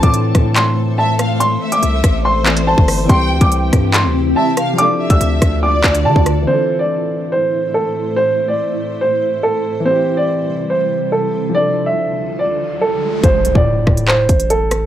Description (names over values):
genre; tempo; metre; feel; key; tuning
hip hop, drill; 142 BPM; 4/4; half-time; A minor; A4 = 440 Hz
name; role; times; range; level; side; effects
warm upright piano; melody; 0.0-14.9 s; A4 to E6; -17 LUFS; right 1 dB; low-pass filter
warm studio violin section; second line; 0.0-6.4 s; C5 to A5; -23 LUFS; left 1 dB; tape echo
warm baby grand piano; accompaniment; 0.0-13.3 s; E3 to D5; -23 LUFS; left 2 dB; low-pass filter
granular cloud pad; sustained chords; 0.0-13.2 s; D2 to E5; -22 LUFS; equal; built-in reverb
distorted 808-style bass; bass; 0.0-6.5, 13.2-14.9 s; G1 to D3; -17 LUFS; equal; distortion
drill drum kit; drums; 0.0-6.4, 13.2-14.8 s; handclaps, hi-hat, kick drum, rim click; -14 LUFS; equal; none
riser and impact; sound effects; 12.4-14.9 s; none; -25 LUFS; equal; none
room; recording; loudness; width
small room ambience; dry, gritty hardware recording; -13 LUFS; side -11 dB against mid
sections
0.0-6.5 A section; 6.5-13.2 B section; 13.2-14.9 C section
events
riser 12.4-13.2; impact 13.2-14.9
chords
0.0 Am; 3.1 C; 4.8 Dm; 6.5 Am; 9.9 C; 11.5 Dm; 13.2 Am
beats
0.14 0.56 0.98 | 1.40 1.83 2.25 2.67 | 3.09 3.52 3.94 4.36 | 4.79 5.21 5.63 6.05 | 6.47 6.90 7.32 7.74 | 8.16 8.59 9.01 9.43 | 9.86 10.28 10.70 11.12 | 11.54 11.97 12.39 12.81 | 13.23 13.66 14.08 14.50